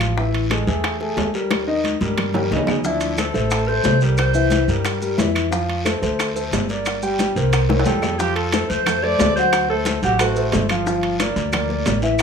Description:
Afro-Cuban jazz; 180 BPM; 4/4; straight; F major; A4 = 439 Hz
warm grand piano; accompaniment; 0.0-12.2 s; Db3 to G5; -22 LUFS; left 1 dB
upright bass; bass; 0.0-12.2 s; G1 to G2; -23 LUFS; right 1 dB
bongos; percussion; 0.0-12.2 s; -26 LUFS; left 8 dB
claves; percussion; 0.0-12.2 s; -30 LUFS; left 3 dB
congas; percussion; 0.0-12.2 s; -30 LUFS; left 1 dB
guiro; percussion; 0.0-12.2 s; -32 LUFS; left 3 dB
timbales; percussion; 0.0-12.2 s; -26 LUFS; right 7 dB
maracas; percussion; 2.8-12.2 s; -35 LUFS; right 3 dB
warm alto saxophone; melody; 2.9-4.8, 7.9-10.7 s; E4 to D5; -22 LUFS; left 1 dB
moderate studio reverb, RT60 0.5 s; rough home demo mix, studio reverb; -17 LUFS; side -6 dB against mid
0.0-8.2 A section; 8.2-12.2 B section
drum fill 1.5-2.8, 7.7-8.2
0.2 A5; 1.5 Eb7; 2.8 Dm9; 4.2 C7; 5.5 F; 6.2 D5; 6.9 Gm; 7.5 C5; 8.2 F; 9.5 D7; 10.9 Gm9
| 0.17 0.51 0.84 1.17 | 1.51 1.84 2.18 2.51 | 2.84 3.18 3.51 3.85 | 4.18 4.52 4.85 5.18 | 5.52 5.85 6.19 6.52 | 6.86 7.19 7.52 7.86 | 8.19 8.53 8.86 9.19 | 9.53 9.86 10.19 10.53 | 10.86 11.19 11.53 11.86 | 12.19

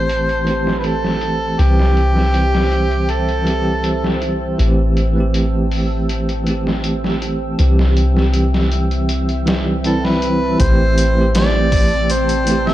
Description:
trip hop; 80 BPM; 4/4; straight; A minor; A4 = 440 Hz
overdriven harmonica; melody; 0.0-4.2, 9.9-12.7 s; G4 to E5; -20 LUFS; equal; vintage 12-bit sampler grit, tape echo
bell-like tine electric piano; accompaniment; 0.0-12.7 s; E3 to G4; -19 LUFS; right 2 dB; tremolo
deep dark ambient pad; sustained chords; 0.0-12.7 s; C4 to E6; -26 LUFS; right 1 dB; chorus, built-in reverb, vintage 12-bit sampler grit
soft 808-style bass; bass; 0.0-12.7 s; E1 to C2; -18 LUFS; equal
trip hop sampler-style drum kit; drums; 0.1-12.7 s; hi-hat, kick drum, snare drum; -23 LUFS; equal; low-pass filter on hats, low-pass filter on snare, low-pass filter on kick, low-pass filter on room
little or no reverb; dark, warm production, faint mains hum; -14 LUFS; side -14 dB against mid
0.0-10.6 A section; 10.6-12.7 B section
0.0 Am7; 1.6 C; 4.6 Am7; 7.6 C; 10.6 Am7
0.10 0.85 | 1.60 2.35 3.10 3.85 | 4.60 5.35 6.10 6.85 | 7.60 8.35 9.10 9.85 | 10.60 11.35 12.10

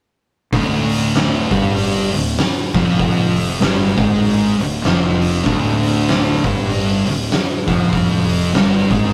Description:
stoner and doom metal; 97 BPM; 4/4; swing 59% on 8ths; D minor; A4 = 440 Hz
thick fuzz guitar; riff; 0.5-9.1 s; D2 to G#3; -20 LUFS; equal; distortion
thick fuzz guitar; riff; 0.5-9.1 s; D2 to G#3; -23 LUFS; equal; distortion
fuzz fingered electric bass; bass; 0.5-9.1 s; D1 to G#1; -26 LUFS; equal; overdrive, tube saturation
oversized low-tuned drum kit; drums; 0.5-9.0 s; hi-hat, kick drum, snare drum; -21 LUFS; equal
moderate studio ambience, RT60 0.5 s; rough rehearsal-room recording, tube saturation; -16 LUFS; mono
0.5-9.1 A section
0.5 Dm
| 0.53 1.14 1.76 2.38 | 3.00 3.62 4.23 4.85 | 5.47 6.08 6.70 7.31 | 7.93 8.54

